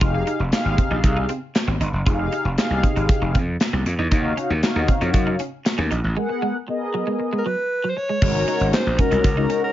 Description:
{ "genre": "early-eighties boogie funk", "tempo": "117 BPM", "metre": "4/4", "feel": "straight", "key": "unclear", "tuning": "A4 = 439 Hz", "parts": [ { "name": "mellow synth brass", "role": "accompaniment", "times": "0.0-9.7 s", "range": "Ab3 to Gb5", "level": "-24 LUFS", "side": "left 2 dB", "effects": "chorus" }, { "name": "clean electric guitar", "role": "riff", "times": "0.0-9.6 s", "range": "Gb3 to F4", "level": "-30 LUFS", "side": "right 3 dB", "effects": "wide subtle chorus" }, { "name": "gritty slap bass", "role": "bass", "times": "0.0-9.5 s", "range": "F1 to Gb2", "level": "-22 LUFS", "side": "equal", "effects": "overdrive" }, { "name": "modern studio drum kit", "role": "drums", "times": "0.0-9.6 s", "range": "crash cymbal, handclaps, hi-hat, kick drum, snare drum", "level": "-21 LUFS", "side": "equal", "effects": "gated reverb" }, { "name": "warm alto saxophone", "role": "melody", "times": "7.4-9.7 s", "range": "Bb4 to Db5", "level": "-22 LUFS", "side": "equal", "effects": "none" } ], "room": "light reverb, studio ambience", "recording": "nothing above 7.5 kHz", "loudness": "-18 LUFS", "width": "side -13 dB against mid", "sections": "0.0-8.2 A section; 8.2-9.7 B section", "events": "break 6.2-8.2", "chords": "0.0 Fm9; 4.1 Ebm9; 6.2 Abm9; 8.2 Ab9sus4" }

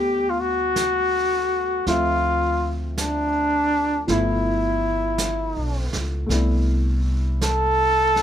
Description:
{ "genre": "jazz ballad", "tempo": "54 BPM", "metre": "4/4", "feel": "swing 67% on 8ths", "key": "G major", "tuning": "A4 = 440 Hz", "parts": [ { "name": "warm flugelhorn", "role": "melody", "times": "0.0-8.2 s", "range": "D4 to A4", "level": "-20 LUFS", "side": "equal", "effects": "none" }, { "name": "warm grand piano", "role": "accompaniment", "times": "0.0-8.2 s", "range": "F3 to E5", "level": "-29 LUFS", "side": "left 1 dB", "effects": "none" }, { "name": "upright bass", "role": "bass", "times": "0.0-8.2 s", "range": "G1 to D2", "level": "-25 LUFS", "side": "equal", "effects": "none" }, { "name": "vintage brush drum kit", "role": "drums", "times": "0.8-8.2 s", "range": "brushed snare drum, hi-hat, snare drum", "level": "-32 LUFS", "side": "right 4 dB", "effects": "none" } ], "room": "light reverb", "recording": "none", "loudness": "-19 LUFS", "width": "side -10 dB against mid", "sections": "0.0-8.2 A section", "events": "none", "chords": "0.0 Gmaj9; 1.9 Dm7; 4.1 G13; 6.3 Cmaj13" }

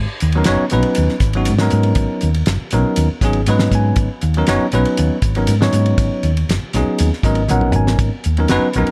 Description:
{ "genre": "electric jazz fusion", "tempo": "119 BPM", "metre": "4/4", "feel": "straight", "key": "G# minor", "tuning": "A4 = 441 Hz", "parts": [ { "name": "hollow-body short-scale fingered electric bass", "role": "bass", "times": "0.0-8.9 s", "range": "F#1 to G#2", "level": "-19 LUFS", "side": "equal", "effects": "none" }, { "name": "damped 70s drum kit", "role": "drums", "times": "0.2-8.9 s", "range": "hi-hat, kick drum, ride cymbal, snare drum, toms", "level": "-23 LUFS", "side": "equal", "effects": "none" }, { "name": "bell-like tine electric piano", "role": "accompaniment", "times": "0.4-8.9 s", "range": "F#3 to G#5", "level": "-20 LUFS", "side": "equal", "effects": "none" } ], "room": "light reverb, small room ambience", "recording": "dark, warm production", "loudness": "-16 LUFS", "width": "mono", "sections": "0.0-8.9 A section", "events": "tine electric piano fill 3.2-4.0, 7.0-8.0; drum fill 7.5-8.0", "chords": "0.0 G#m11" }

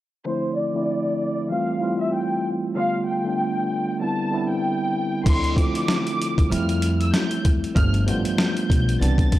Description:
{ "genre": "hip hop, boom-bap hip-hop", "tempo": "96 BPM", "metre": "4/4", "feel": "swing 56% on 16ths", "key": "D dorian", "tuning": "A4 = 440 Hz", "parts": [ { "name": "mellow tine electric piano", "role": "accompaniment", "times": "0.2-9.4 s", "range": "D3 to F4", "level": "-24 LUFS", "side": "equal", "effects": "slow stereo tremolo, high-pass filter, low-pass filter" }, { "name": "warm studio violin section", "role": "melody", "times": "0.3-9.4 s", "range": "C5 to A6", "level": "-27 LUFS", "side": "equal", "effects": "high-pass filter, low-pass filter" }, { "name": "upright bass", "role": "bass", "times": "5.3-9.4 s", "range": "G1 to F2", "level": "-23 LUFS", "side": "equal", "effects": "none" }, { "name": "boom bap sampler-style drum kit", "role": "drums", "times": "5.3-9.4 s", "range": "crash cymbal, hi-hat, kick drum, snare drum", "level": "-21 LUFS", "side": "equal", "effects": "none" } ], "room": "digital ambience", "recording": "dry, gritty hardware recording, transformer saturation", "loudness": "-20 LUFS", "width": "side -15 dB against mid", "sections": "0.3-5.3 A section; 5.3-9.4 B section", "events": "filter sweep 0.3-5.3", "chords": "0.3 Dm7; 1.5 Fmaj7; 2.8 G7; 4.0 Cmaj7; 5.3 Dm7; 6.5 Fmaj7; 7.8 G7" }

